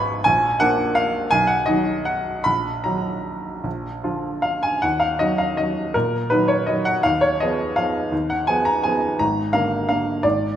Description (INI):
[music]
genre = classical, piano waltz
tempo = 146-178 BPM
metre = 3/4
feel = rubato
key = Eb minor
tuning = A4 = 442 Hz
[part]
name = clear baby grand piano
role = solo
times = 0.0-10.6 s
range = Ab1 to Db6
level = -18 LUFS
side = equal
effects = none
[sound]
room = moderate recital hall reverb, RT60 1.6 s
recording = none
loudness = -18 LUFS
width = side -10 dB against mid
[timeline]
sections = 0.0-4.8 A section; 4.8-10.6 B section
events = none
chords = 0.3 Bb7; 1.3 B; 2.4 Ebm/Bb; 3.7 Bb; 4.8 Ebm; 7.0 Fdim/Eb; 9.2 Bb7/Ab